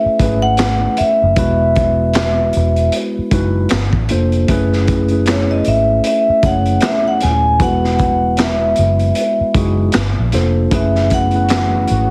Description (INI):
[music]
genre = R&B, neo-soul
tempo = 77 BPM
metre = 4/4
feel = swing 58% on 16ths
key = F# dorian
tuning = A4 = 441 Hz
[part]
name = vibraphone with medium hard mallets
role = melody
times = 0.0-12.1 s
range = C#5 to G#5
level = -18 LUFS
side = equal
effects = none
[part]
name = mellow tine electric piano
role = accompaniment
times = 0.0-12.1 s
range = G3 to C#5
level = -21 LUFS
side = equal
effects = phaser
[part]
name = vintage muted fingered electric bass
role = bass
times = 0.1-12.1 s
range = D#1 to Bb1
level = -19 LUFS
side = equal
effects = none
[part]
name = crunchy breakbeat drum kit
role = drums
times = 0.2-12.1 s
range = handclaps, hi-hat, kick drum, snare drum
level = -21 LUFS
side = equal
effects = none
[part]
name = warm analog pad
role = sustained chords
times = 10.7-12.1 s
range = E3 to F#4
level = -30 LUFS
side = equal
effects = chorus
[sound]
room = light reverb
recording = heavily compressed radio sound, multiband compression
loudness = -15 LUFS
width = mono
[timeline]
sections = 0.0-12.1 A section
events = none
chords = 0.0 F#m11; 1.4 Emaj9; 3.7 Gm11; 4.5 F#m11; 7.6 Emaj9; 9.9 Gm11; 10.7 F#m11